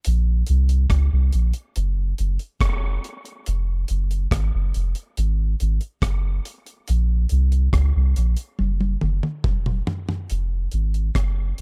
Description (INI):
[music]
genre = dub reggae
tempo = 70 BPM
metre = 4/4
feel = straight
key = F phrygian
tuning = A4 = 440 Hz
[part]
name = deep reggae drum kit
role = drums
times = 0.0-11.6 s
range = hi-hat, kick drum, rim click, toms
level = -28 LUFS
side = equal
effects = none
[part]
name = soft dub sub bass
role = bass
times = 0.1-11.6 s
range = F1 to Db2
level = -22 LUFS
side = equal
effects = none
[sound]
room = little or no reverb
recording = none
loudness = -22 LUFS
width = mono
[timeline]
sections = 0.0-10.3 A section; 10.3-11.6 B section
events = drum fill 8.6-10.3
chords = none